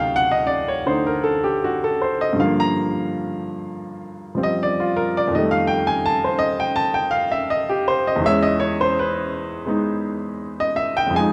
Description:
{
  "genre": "solo jazz",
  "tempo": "82 BPM",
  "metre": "4/4",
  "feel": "swing 67% on 8ths, rubato",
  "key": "unclear",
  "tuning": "A4 = 440 Hz",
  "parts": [
    { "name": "clear baby grand piano", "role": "solo", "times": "0.0-11.3 s", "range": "D2 to Bb5", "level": "-21 LUFS", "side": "equal", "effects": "none" }
  ],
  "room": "moderate studio reverb, RT60 0.8 s",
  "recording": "none",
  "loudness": "-21 LUFS",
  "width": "mono",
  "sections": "0.0-11.3 A section",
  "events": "grand piano solo 0.0-11.3",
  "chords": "0.0 D7b9; 2.4 Gm7; 5.3 F9; 8.2 E6"
}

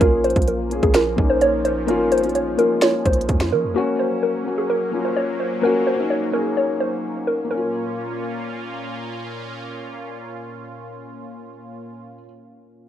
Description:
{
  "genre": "hip hop, trap",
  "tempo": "128 BPM",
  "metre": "4/4",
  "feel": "half-time",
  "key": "Bb minor",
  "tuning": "A4 = 440 Hz",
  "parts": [
    { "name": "hollow square pluck", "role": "melody", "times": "0.0-8.9 s", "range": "Gb4 to Db5", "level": "-21 LUFS", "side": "right 1 dB", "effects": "chorus, low-pass filter, tape echo, plate reverb" },
    { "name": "felt-muted upright piano", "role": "accompaniment", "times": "0.0-12.9 s", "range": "Bb3 to Ab4", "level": "-24 LUFS", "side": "left 2 dB", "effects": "low-pass filter, plate reverb" },
    { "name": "sweeping resonant pad", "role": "sustained chords", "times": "0.0-12.0 s", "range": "Bb2 to F4", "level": "-31 LUFS", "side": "equal", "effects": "chorus, plate reverb" },
    { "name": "warm 808-style bass", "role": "bass", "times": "0.0-3.8 s", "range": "Ab1 to F3", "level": "-27 LUFS", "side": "right 1 dB", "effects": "none" },
    { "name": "trap drum kit", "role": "drums", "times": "0.0-3.5 s", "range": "finger snaps, hi-hat, kick drum, snare drum", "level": "-20 LUFS", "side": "right 1 dB", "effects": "none" }
  ],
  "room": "wet studio reverb, RT60 0.5 s",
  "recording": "rough home demo mix",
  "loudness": "-18 LUFS",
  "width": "side -10 dB against mid",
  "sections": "0.0-7.5 A section; 7.5-11.3 B section",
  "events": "none",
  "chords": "0.0 Bbm; 3.8 Gb; 7.5 Bbm"
}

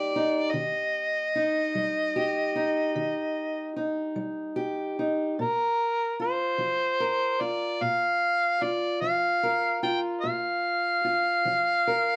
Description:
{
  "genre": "acoustic country blues, solo or duo",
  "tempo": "50 BPM (dotted quarters)",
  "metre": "12/8",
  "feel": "straight",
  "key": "Bb major",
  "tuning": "A4 = 440 Hz",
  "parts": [
    { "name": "overdriven harmonica", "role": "melody", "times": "0.0-12.2 s", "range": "Bb4 to G5", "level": "-28 LUFS", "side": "equal", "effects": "none" },
    { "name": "fingerpicked steel-string acoustic guitar", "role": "accompaniment", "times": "0.0-12.2 s", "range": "Bb2 to Bb4", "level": "-32 LUFS", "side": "equal", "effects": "none" }
  ],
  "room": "moderate studio reverb, RT60 0.6 s",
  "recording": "dark, warm production",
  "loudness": "-27 LUFS",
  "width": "mono",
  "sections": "0.0-12.2 A section",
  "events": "none",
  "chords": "0.0 Eb; 5.4 Bb5"
}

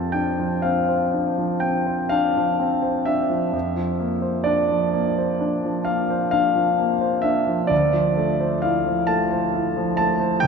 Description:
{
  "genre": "classical, impressionist solo piano",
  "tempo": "40-46 BPM (dotted quarters)",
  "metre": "9/8",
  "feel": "rubato",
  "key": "unclear",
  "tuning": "A4 = 440 Hz",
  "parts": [
    { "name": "warm concert grand piano", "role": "solo", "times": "0.0-10.5 s", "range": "Db2 to A5", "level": "-19 LUFS", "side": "equal", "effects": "none" }
  ],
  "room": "wet cathedral reverb, RT60 6.5 s",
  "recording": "in a vast, echoing space, nothing above 10.7 kHz",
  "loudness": "-19 LUFS",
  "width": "side -5 dB against mid",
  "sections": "0.0-10.5 A section",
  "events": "none",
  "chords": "0.0 F6; 3.5 Bbadd9/F; 7.7 Dm9"
}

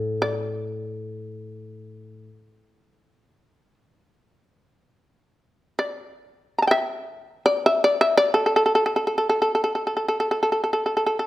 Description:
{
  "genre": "japanese traditional, Japanese chamber music",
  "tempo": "free time",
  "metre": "none",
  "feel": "none",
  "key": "unclear",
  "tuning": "A4 = 437 Hz",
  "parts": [
    { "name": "shamisen", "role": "melody", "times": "0.0-11.3 s", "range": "A4 to Bb5", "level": "-19 LUFS", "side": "equal", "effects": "none" },
    { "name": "koto", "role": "accompaniment", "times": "0.0-2.3 s", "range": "A2", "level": "-31 LUFS", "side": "left 2 dB", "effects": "none" }
  ],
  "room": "moderate recital hall reverb, RT60 1.4 s",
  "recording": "none",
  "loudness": "-20 LUFS",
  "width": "side -16 dB against mid",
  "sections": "0.0-11.3 A section",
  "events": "slowing down 3.2-11.3",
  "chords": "none"
}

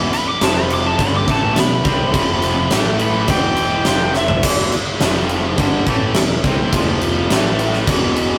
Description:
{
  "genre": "hard rock",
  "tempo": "105 BPM",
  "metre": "4/4",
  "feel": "straight",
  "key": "E minor",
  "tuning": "A4 = 440 Hz",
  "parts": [
    { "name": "distorted electric guitar", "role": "riff", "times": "0.0-8.4 s", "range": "E2 to C4", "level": "-26 LUFS", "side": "equal", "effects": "distortion" },
    { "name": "high-gain distorted guitar", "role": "riff", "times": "0.0-8.4 s", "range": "E2 to C4", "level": "-28 LUFS", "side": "equal", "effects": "none" },
    { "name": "overdriven electric guitar", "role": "riff", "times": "0.0-8.4 s", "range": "E2 to C4", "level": "-26 LUFS", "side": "equal", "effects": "none" },
    { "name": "growling fingered electric bass", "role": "bass", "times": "0.0-8.4 s", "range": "E1 to C2", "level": "-27 LUFS", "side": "equal", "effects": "overdrive" },
    { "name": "biting lead guitar", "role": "melody", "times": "0.1-4.4 s", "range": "E5 to D6", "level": "-23 LUFS", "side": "equal", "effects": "overdrive" },
    { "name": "huge arena drum kit", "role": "drums", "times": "0.1-8.3 s", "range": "crash cymbal, kick drum, snare drum, toms", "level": "-20 LUFS", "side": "equal", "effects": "none" }
  ],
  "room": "moderate stone room reverb, RT60 1.1 s",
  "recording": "rough rehearsal-room recording, tube saturation",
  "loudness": "-16 LUFS",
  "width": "mono",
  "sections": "0.0-4.4 A section; 4.4-8.4 B section",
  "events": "lead electric guitar solo 0.0-4.4; drum fill 4.1",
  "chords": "0.4 F5; 1.0 Em; 2.1 F5; 2.7 A5; 3.3 Em; 3.9 F5; 4.4 E5; 5.0 F5; 5.6 Em; 6.7 F5; 7.3 A5; 7.9 E5"
}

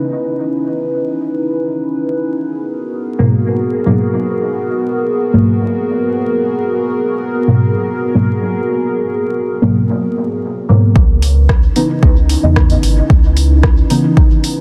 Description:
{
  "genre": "dub techno",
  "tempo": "112 BPM",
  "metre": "4/4",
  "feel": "straight",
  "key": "C# minor",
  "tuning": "A4 = 440 Hz",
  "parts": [
    { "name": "dark analog pad", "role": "sustained chords", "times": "0.0-14.6 s", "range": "B3 to B4", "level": "-20 LUFS", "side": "equal", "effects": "chorus, phaser, vintage 12-bit sampler grit, sidechain pumping" },
    { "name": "deep mellow chord stab", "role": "stabs", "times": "3.2-14.1 s", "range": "G#2 to D#4", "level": "-18 LUFS", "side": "equal", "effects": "chorus, phaser, sidechain pumping, dub echo" },
    { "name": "soft dub sub bass", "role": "bass", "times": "11.0-13.8 s", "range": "G#1 to E2", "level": "-14 LUFS", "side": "equal", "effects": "sidechain pumping" },
    { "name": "electronic kick drum", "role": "drums", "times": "11.0-14.3 s", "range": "none", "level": "-13 LUFS", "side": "equal", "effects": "overdrive" },
    { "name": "deep house drum kit", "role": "drums", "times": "11.2-14.5 s", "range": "hi-hat, rim click", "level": "-25 LUFS", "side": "equal", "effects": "overdrive, low-pass filter on hats, low-pass filter on snare, low-pass filter on room" }
  ],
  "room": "moderate huge ambient reverb, RT60 6.6 s",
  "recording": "dense, heavily limited modern master, vinyl crackle",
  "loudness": "-14 LUFS",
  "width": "mono",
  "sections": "0.0-11.0 A section; 11.0-14.6 B section",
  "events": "none",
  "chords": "0.0 C#m9; 2.4 G#m9; 11.0 C#m9"
}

